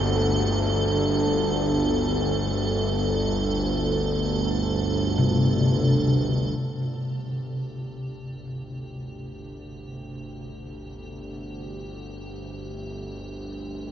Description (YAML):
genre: dark ambient drone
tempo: free time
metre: none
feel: none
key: G minor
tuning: A4 = 441 Hz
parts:
  - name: gamelan-type bronze metallophone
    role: arpeggios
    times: 0.0-11.7 s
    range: C3 to Bb3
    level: -27 LUFS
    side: left 1 dB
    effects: tape echo
  - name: bowed-like drone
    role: drone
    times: 0.0-13.9 s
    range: G1 to D2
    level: -26 LUFS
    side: equal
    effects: built-in reverb
  - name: icy glass pad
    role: texture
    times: 0.0-13.9 s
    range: G4 to A4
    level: -31 LUFS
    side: right 1 dB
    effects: chorus, built-in reverb, shimmer reverb
room: wet huge ambient reverb, RT60 8.1 s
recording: none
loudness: -22 LUFS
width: side -10 dB against mid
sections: 0.0-6.6 A section; 6.6-13.9 B section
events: none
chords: 0.0 Gmadd9; 6.6 G5